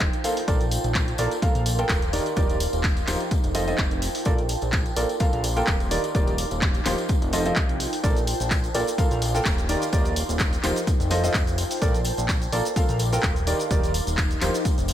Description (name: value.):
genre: piano house.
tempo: 127 BPM.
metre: 4/4.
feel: swing 54% on 16ths.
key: Bb major.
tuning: A4 = 440 Hz.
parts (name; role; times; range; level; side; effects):
fat analog bass; bass; 0.0-14.9 s; Eb1 to C2; -27 LUFS; equal; tube saturation, sidechain pumping.
electronic kick drum; drums; 0.0-14.8 s; none; -24 LUFS; equal; small room ambience.
punchy analog drum machine; drums; 0.0-14.9 s; handclaps, hi-hat, shaker; -30 LUFS; equal; small room ambience.
tambourine; percussion; 0.0-14.9 s; none; -37 LUFS; left 4 dB; none.
ethereal airy pad; texture; 0.0-14.9 s; Eb4 to D6; -31 LUFS; right 1 dB; ensemble chorus, built-in reverb, sidechain pumping.
bright upright piano; riff; 0.2-14.5 s; Eb3 to G5; -27 LUFS; right 1 dB; sidechain pumping, analog delay.
room: light reverb.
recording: none.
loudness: -21 LUFS.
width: side -11 dB against mid.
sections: 0.0-14.9 A section.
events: none.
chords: 0.5 Bbmaj7; 2.1 Ebmaj7; 3.3 F7; 4.3 Bbmaj7; 5.9 Ebmaj7; 7.1 F7; 8.0 Bbmaj7; 9.7 Ebmaj7; 10.9 F7; 11.8 Bbmaj7; 13.5 Ebmaj7.